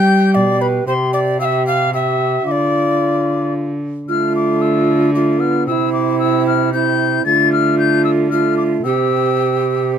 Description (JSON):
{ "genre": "classical, renaissance-style consort dance", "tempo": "113 BPM", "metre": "3/4", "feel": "straight", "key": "D dorian", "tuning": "A4 = 435 Hz", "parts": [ { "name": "hollow concert flute", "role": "melody", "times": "0.0-9.9 s", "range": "B5 to A6", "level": "-20 LUFS", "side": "left 10 dB", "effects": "none" }, { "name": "mellow tenor recorder", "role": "second line", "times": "0.0-10.0 s", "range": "E4 to G5", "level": "-18 LUFS", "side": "right 5 dB", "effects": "none" }, { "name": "mellow trombone", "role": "accompaniment", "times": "0.0-10.0 s", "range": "A3 to G4", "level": "-21 LUFS", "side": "left 2 dB", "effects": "none" }, { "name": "dark cello", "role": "bass", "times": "0.0-10.0 s", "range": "B2 to G3", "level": "-19 LUFS", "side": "right 1 dB", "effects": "none" } ], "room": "light reverb", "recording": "close, detailed microphones", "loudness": "-13 LUFS", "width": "side -8 dB against mid", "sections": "0.0-4.1 A section; 4.1-10.0 B section", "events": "none", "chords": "0.0 G; 0.9 C; 2.5 Dm; 5.7 C; 7.3 Dm; 8.8 C" }